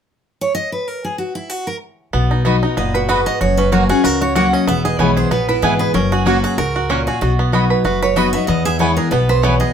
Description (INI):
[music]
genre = bluegrass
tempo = 189 BPM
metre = 4/4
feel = swing 55% on 8ths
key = B major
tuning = A4 = 440 Hz
[part]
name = picked steel-string acoustic guitar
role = melody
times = 0.4-9.7 s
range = E4 to F#5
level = -20 LUFS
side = right 1 dB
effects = none
[part]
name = picked steel-string acoustic guitar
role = accompaniment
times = 2.1-9.7 s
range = E2 to F#4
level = -18 LUFS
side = left 3 dB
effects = none
[part]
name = bluegrass banjo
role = arpeggios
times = 2.1-9.7 s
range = B3 to B4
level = -20 LUFS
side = right 5 dB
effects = none
[part]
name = upright bass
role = bass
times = 2.1-9.6 s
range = E1 to E2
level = -20 LUFS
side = equal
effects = none
[part]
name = mandolin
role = stabs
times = 2.5-9.5 s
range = A#3 to B5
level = -20 LUFS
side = right 2 dB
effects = none
[sound]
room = moderate studio ambience, RT60 0.5 s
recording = minimal, uncompressed stereo recording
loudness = -14 LUFS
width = side -8 dB against mid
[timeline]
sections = 0.0-2.1 A section; 2.1-9.7 B section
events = none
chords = 0.0 N.C.; 2.1 B; 3.4 F#; 4.7 E; 5.9 F#; 7.2 B; 8.5 E